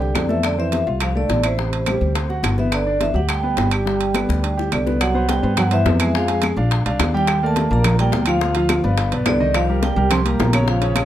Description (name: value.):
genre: Afro-Cuban jazz.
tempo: 211 BPM.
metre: 4/4.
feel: straight.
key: unclear.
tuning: A4 = 441 Hz.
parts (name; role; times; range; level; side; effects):
vibraphone with medium mallets; melody; 0.0-10.9 s; C5 to C6; -24 LUFS; right 1 dB; none.
breathy trombone; second line; 0.0-10.9 s; C3 to C4; -26 LUFS; right 3 dB; none.
clear grand piano; accompaniment; 0.0-11.1 s; C#3 to Ab5; -24 LUFS; left 1 dB; none.
upright bass; bass; 0.0-11.0 s; G1 to G2; -21 LUFS; equal; none.
bongos; percussion; 0.0-11.1 s; none; -29 LUFS; left 9 dB; none.
congas; percussion; 0.0-11.1 s; none; -26 LUFS; left 1 dB; none.
claves; percussion; 0.1-11.1 s; none; -29 LUFS; right 1 dB; none.
timbales; percussion; 0.2-11.1 s; none; -27 LUFS; right 7 dB; none.
room: little or no reverb.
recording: close, detailed microphones.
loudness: -16 LUFS.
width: side -12 dB against mid.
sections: 0.0-5.0 A section; 5.0-11.1 B section.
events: drum fill 4.3-5.0.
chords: 0.4 Fmaj7; 1.6 Am7; 2.2 D7; 2.7 G; 5.0 Cmaj7; 6.1 Fm; 6.7 Bb; 7.3 Ebmaj9#11; 8.4 G7; 9.0 G; 9.5 Cm7.